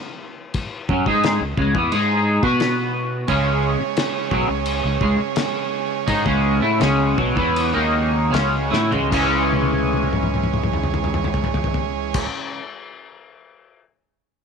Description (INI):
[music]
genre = psychedelic rock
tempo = 74-88 BPM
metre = 4/4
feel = straight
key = C# minor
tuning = A4 = 438 Hz
[part]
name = cloth-damped thuddy drum kit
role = drums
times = 0.5-13.8 s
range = crash cymbal, kick drum, snare drum, toms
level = -25 LUFS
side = left 4 dB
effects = none
[part]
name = twangy electric guitar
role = riff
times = 0.9-12.6 s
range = B2 to B4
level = -20 LUFS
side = equal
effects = rotary speaker, double-tracked left and right
[part]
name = fingered electric bass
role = bass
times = 0.9-12.3 s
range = B1 to B2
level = -25 LUFS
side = equal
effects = none
[part]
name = combo organ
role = sustained chords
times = 3.3-12.3 s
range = C#3 to C#5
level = -25 LUFS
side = right 11 dB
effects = none
[sound]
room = light reverb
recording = 1960s-style stereo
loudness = -18 LUFS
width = side -6 dB against mid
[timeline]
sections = 0.0-9.1 A section; 9.1-12.3 B section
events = slowing down 3.3-9.1; drum fill 8.7-9.1, 9.5-12.1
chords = 0.0 C#m; 2.4 B5; 3.3 C#m